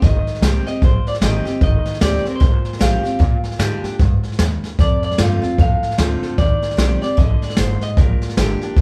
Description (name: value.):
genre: rockabilly.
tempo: 151 BPM.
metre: 4/4.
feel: swing 60% on 8ths.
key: unclear.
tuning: A4 = 440 Hz.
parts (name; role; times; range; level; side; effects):
electric guitar through a small old amp; melody; 0.0-8.8 s; A4 to F5; -27 LUFS; equal; spring reverb.
picked steel-string acoustic guitar; accompaniment; 0.0-8.8 s; F2 to G4; -27 LUFS; equal; none.
upright bass; bass; 0.0-8.8 s; G1 to Bb2; -23 LUFS; equal; none.
jazz brush drum kit; drums; 0.0-8.8 s; hi-hat, kick drum, snare drum; -19 LUFS; equal; none.
room: light reverb.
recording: band playing live in one room.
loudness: -17 LUFS.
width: mono.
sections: 0.0-8.8 A section.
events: none.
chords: 0.0 Eb6; 3.2 Bb6; 4.8 F6; 6.4 Eb6; 8.0 Bb6.